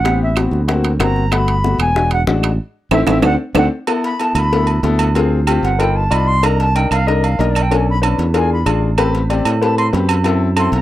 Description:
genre	Afro-Cuban jazz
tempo	188 BPM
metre	4/4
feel	straight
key	unclear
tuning	A4 = 440 Hz
part	silver concert flute	melody	0.0-10.8 s	D5 to C6	-19 LUFS	right 1 dB	none
part	warm baby grand piano	accompaniment	0.0-10.8 s	G#3 to D5	-20 LUFS	left 4 dB	none
part	modern bright fingered electric bass	bass	0.0-10.8 s	E1 to A2	-16 LUFS	right 1 dB	none
part	bongos and cowbell	percussion	0.1-10.8 s	none	-23 LUFS	left 4 dB	none
part	timbales and agogo bells	percussion	0.1-10.7 s	none	-22 LUFS	right 7 dB	none
part	claves	percussion	0.4-10.7 s	none	-26 LUFS	right 7 dB	none
room	light reverb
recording	dry, close 1970s-style studio recording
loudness	-13 LUFS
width	side -14 dB against mid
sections	0.0-3.9 A section; 3.9-10.8 A section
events	flute solo 0.0-10.8; band accent 2.6-3.9; drum fill 3.1-3.9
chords	0.0 Am9; 0.7 Daug7; 1.3 Gmaj9; 2.0 E7; 2.6 Am; 3.2 D7; 3.9 Asus24; 5.2 Dm7b5; 5.8 G7b13; 6.4 Cm9; 7.7 Bm7; 8.3 E7b9; 9.0 Am7; 10.3 F#m7b5

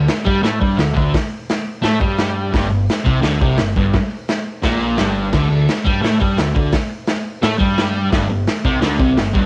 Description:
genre	garage rock duo or trio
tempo	172 BPM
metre	4/4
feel	straight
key	unclear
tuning	A4 = 437 Hz
part	fuzz guitar	riff	0.0-9.5 s	G2 to A3	-20 LUFS	equal	distortion
part	growling picked electric bass	bass	0.0-9.5 s	G1 to A2	-24 LUFS	equal	overdrive
part	raw garage drum kit	drums	0.1-9.4 s	crash cymbal, hi-hat, kick drum, snare drum	-21 LUFS	equal	cassette tape
room	small room ambience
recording	home recording on cassette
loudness	-17 LUFS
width	mono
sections	0.0-9.5 A section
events	none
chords	0.0 D5; 2.5 G5; 5.3 D5; 8.1 G5

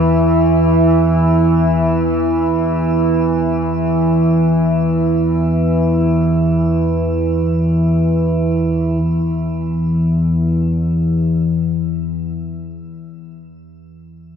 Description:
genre	dark ambient drone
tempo	free time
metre	none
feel	none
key	unclear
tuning	A4 = 440 Hz
part	analog drone	drone	0.0-12.3 s	E2 to E3	-15 LUFS	equal	chorus
part	metallic inharmonic drone	texture	0.0-9.0 s	E4	-20 LUFS	right 1 dB	chorus, built-in reverb, shimmer reverb
room	wet cathedral reverb, RT60 5.4 s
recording	none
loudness	-13 LUFS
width	side -7 dB against mid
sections	0.0-9.0 A section; 9.0-13.1 B section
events	none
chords	0.0 E5; 9.0 N.C.

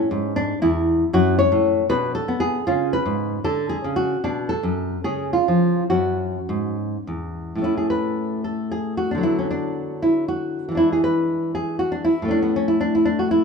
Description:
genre	classical, baroque-style dance for nylon-string guitar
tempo	67-80 BPM (dotted quarters)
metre	6/8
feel	rubato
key	F# minor, A major from 7.6 s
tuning	A4 = 439 Hz
part	nylon-string guitar	solo	0.0-13.4 s	E2 to C#5	-19 LUFS	equal	none
room	moderate recital hall reverb, RT60 1.8 s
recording	minimal, uncompressed stereo recording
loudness	-19 LUFS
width	side -5 dB against mid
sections	0.0-7.6 A section; 7.6-13.4 A section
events	none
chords	0.0 A (rootless); 1.1 F#m; 1.9 Bm7; 2.7 C#5; 3.5 Dmaj7#11; 4.2 B5; 5.0 C#; 5.9 F#5; 7.6 A; 9.2 Bm/D; 10.8 E7; 12.3 A

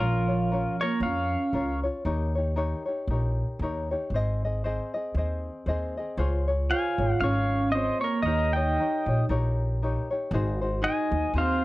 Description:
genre	Hawaiian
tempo	116 BPM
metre	4/4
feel	swing 57% on 8ths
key	Ab major, Db major from 6.2 s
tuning	A4 = 440 Hz
part	pedal steel guitar	melody	0.0-1.8, 6.7-11.6 s	F4 to Ab5	-27 LUFS	equal	none
part	vibraphone with soft mallets	second line	0.0-1.8, 6.7-11.6 s	F3 to F4	-29 LUFS	right 3 dB	none
part	tenor ukulele	accompaniment	0.0-11.6 s	C4 to Eb5	-32 LUFS	left 2 dB	none
part	upright bass	bass	0.0-11.6 s	Ab1 to F2	-28 LUFS	equal	none
room	light reverb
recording	dry, close 1970s-style studio recording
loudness	-24 LUFS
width	side -18 dB against mid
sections	0.0-6.2 A section; 6.2-11.6 B section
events	none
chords	0.0 Bbm; 2.0 Eb7; 4.1 Ab; 6.2 Dbmaj7; 8.2 Eb7; 10.3 Ab7

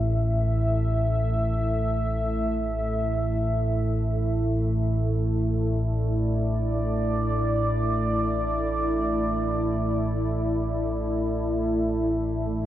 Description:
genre	dark ambient drone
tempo	free time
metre	none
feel	none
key	unclear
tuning	A4 = 441 Hz
part	deep dark ambient pad	sustained chords	0.0-12.7 s	A3 to E5	-26 LUFS	right 1 dB	chorus, built-in reverb
part	deep rumbling drone	drone	0.0-12.7 s	A1 to A2	-26 LUFS	equal	built-in reverb
part	backwards swelling texture	texture	12.6-12.7 s	E4 to E5	-57 LUFS	left 1 dB	none
room	wet cathedral reverb, RT60 4.8 s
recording	worn, warbling old tape, cassette tape, warbly pitch drift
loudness	-23 LUFS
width	side -12 dB against mid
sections	0.0-12.5 A section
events	none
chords	0.0 A5

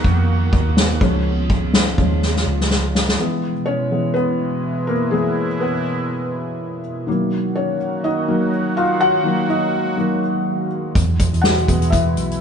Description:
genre	piano-driven pop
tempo	124 BPM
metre	4/4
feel	swing 56% on 16ths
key	unclear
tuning	A4 = 444 Hz
part	felt-muted upright piano	accompaniment	0.0-12.4 s	D#3 to F#5	-20 LUFS	left 1 dB	none
part	sweeping resonant pad	sustained chords	0.0-12.4 s	B2 to F#4	-25 LUFS	right 2 dB	chorus
part	vintage muted picked electric bass	bass	0.0-3.2, 11.0-12.4 s	B1 to E#2	-19 LUFS	right 1 dB	none
part	soft-mallet drum kit	drums	0.0-3.2, 11.0-12.4 s	hi-hat, kick drum, ride cymbal, snare drum	-18 LUFS	equal	none
room	moderate stone room reverb, RT60 1.1 s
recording	band playing live in one room, nothing above 10.5 kHz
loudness	-16 LUFS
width	side -7 dB against mid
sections	0.0-3.2 A section; 3.2-12.4 B section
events	drum fill 2.2-3.2; felt piano solo 3.2-12.4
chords	0.0 D#m; 1.0 C#; 3.2 E; 7.1 D#m; 11.0 E

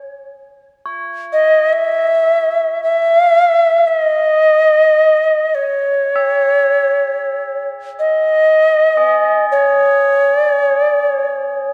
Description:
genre	world meditative, free-time meditation music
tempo	free time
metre	none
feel	none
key	C# minor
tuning	A4 = 440 Hz
part	tubular bells	texture	0.0-11.7 s	G#4 to E5	-26 LUFS	equal	none
part	Native American-style cedar flute	melody	1.3-11.7 s	C#5 to E5	-14 LUFS	equal	tape echo
room	wet scoring stage reverb, RT60 1.8 s, studio reverb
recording	dark, warm production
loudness	-14 LUFS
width	mono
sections	0.4-11.7 A section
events	none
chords	none

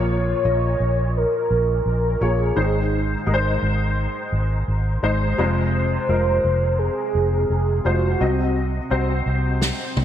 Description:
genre	piano-driven pop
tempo	85 BPM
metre	4/4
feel	straight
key	Bb minor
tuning	A4 = 440 Hz
part	warm upright piano	accompaniment	0.0-10.0 s	Ab2 to Eb5	-24 LUFS	left 2 dB	ensemble chorus
part	vintage muted fingered electric bass	bass	0.0-10.0 s	F1 to C2	-21 LUFS	equal	none
part	warm velvety synth lead	melody	0.1-8.9 s	Gb4 to Db5	-23 LUFS	right 1 dB	chorus
part	natural country drum kit	drums	9.6-10.0 s	snare drum, toms	-22 LUFS	left 1 dB	none
room	moderate lush hall reverb, RT60 2.4 s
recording	bright 1980s-style digital production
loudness	-18 LUFS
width	side -10 dB against mid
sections	0.0-10.0 A section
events	drum fill 9.6-10.0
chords	0.0 Bbm; 2.6 Ab; 5.4 Fm; 8.2 Cdim

